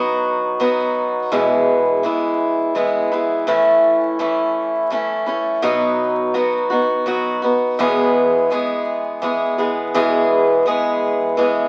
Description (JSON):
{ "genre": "country", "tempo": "84 BPM", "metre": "3/4", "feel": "straight", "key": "E major", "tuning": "A4 = 440 Hz", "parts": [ { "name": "picked swing-style acoustic guitar", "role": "solo", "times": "0.0-11.7 s", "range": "E2 to G#4", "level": "-18 LUFS", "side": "equal", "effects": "none" } ], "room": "moderate studio reverb, RT60 0.7 s", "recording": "very old 78 rpm record, vinyl crackle", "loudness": "-18 LUFS", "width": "mono", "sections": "0.0-1.3 A section; 1.3-9.9 B section; 9.9-11.7 C section", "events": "none", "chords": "0.0 B; 1.3 E; 3.5 A; 5.6 B; 7.8 E" }